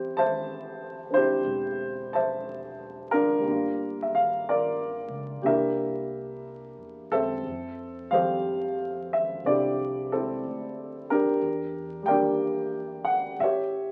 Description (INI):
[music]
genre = jazz ballad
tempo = 60 BPM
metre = 4/4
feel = swing 66% on 8ths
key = unclear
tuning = A4 = 440 Hz
[part]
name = warm upright piano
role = accompaniment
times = 0.0-13.9 s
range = F3 to A5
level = -28 LUFS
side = equal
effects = none
[part]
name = upright bass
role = bass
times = 0.0-13.9 s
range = E1 to F#2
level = -46 LUFS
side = equal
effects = none
[sound]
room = moderate club reverb, RT60 0.5 s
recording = very old 78 rpm record, vinyl crackle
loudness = -27 LUFS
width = mono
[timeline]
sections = 0.0-13.9 A section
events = none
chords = 0.0 Am7; 3.4 Gm7; 5.4 C9; 7.4 Fmaj9; 11.4 Em7b5; 13.4 A7